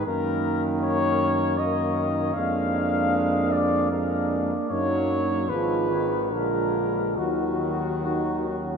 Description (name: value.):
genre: classical, hymn-like piece for brass band.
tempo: 68-79 BPM.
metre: 3/4.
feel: rubato.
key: Eb minor.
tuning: A4 = 440 Hz.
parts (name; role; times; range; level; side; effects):
dark trumpet section; melody; 0.0-8.8 s; Gb4 to F5; -27 LUFS; left 5 dB; none.
mellow French horn section; second line; 0.0-8.8 s; Db4 to F4; -28 LUFS; right 5 dB; none.
brilliant trombone; accompaniment; 0.0-8.8 s; D3 to Ab3; -33 LUFS; right 2 dB; none.
clear euphonium; accompaniment; 0.0-8.8 s; Gb3 to Bb3; -31 LUFS; left 1 dB; none.
warm tuba; bass; 0.0-8.8 s; Ab1 to Gb2; -29 LUFS; equal; none.
room: wet cathedral reverb, RT60 6.7 s.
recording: in a vast, echoing space, nothing above 10.9 kHz.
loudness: -22 LUFS.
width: side -6 dB against mid.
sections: 0.0-8.8 A section.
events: none.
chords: 0.1 Ebm/Gb; 2.4 Bb7/F; 4.7 Ebm/Gb; 5.5 Fdim/Ab; 6.3 Bb7; 7.2 Ebm.